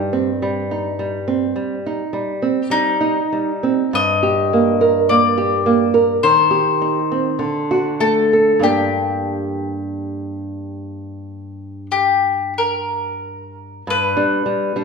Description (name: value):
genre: romantic duo for mandolin and classical guitar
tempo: 44-54 BPM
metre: 4/4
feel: rubato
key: G minor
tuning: A4 = 442 Hz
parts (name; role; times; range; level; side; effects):
- mandolin; melody; 0.0-14.8 s; Eb4 to Eb5; -18 LUFS; left 5 dB; none
- nylon-string guitar; accompaniment; 0.0-14.8 s; G2 to Bb4; -19 LUFS; right 4 dB; none
room: wet large studio reverb, RT60 1.4 s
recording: band playing live in one room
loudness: -15 LUFS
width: side -5 dB against mid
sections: 0.0-13.9 A section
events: none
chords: 0.0 Cm/G; 3.9 Gm; 6.2 Cm/Eb; 7.4 D; 8.6 Gm; 13.9 G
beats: 0.42 1.57 2.71 | 3.94 5.10 6.23 7.40 | 8.65 9.96 11.26 12.57 | 13.88